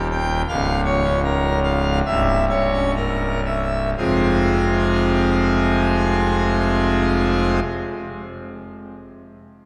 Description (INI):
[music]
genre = classical, organ toccata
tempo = 56-86 BPM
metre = 4/4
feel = straight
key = F minor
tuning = A4 = 444 Hz
[part]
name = pipe organ, full organ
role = solo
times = 0.0-7.6 s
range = C1 to G5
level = -20 LUFS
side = equal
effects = none
[sound]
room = wet cathedral reverb, RT60 4.7 s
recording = heard from further back in the room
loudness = -19 LUFS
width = mono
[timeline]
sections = 0.0-4.0 A section; 4.0-8.3 B section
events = slowing down 0.0-4.0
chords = 0.5 Bbm/Db; 2.1 C7b9; 4.0 Fm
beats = | 0.48 1.23 2.05 2.96 | 3.98 5.05 6.13 7.20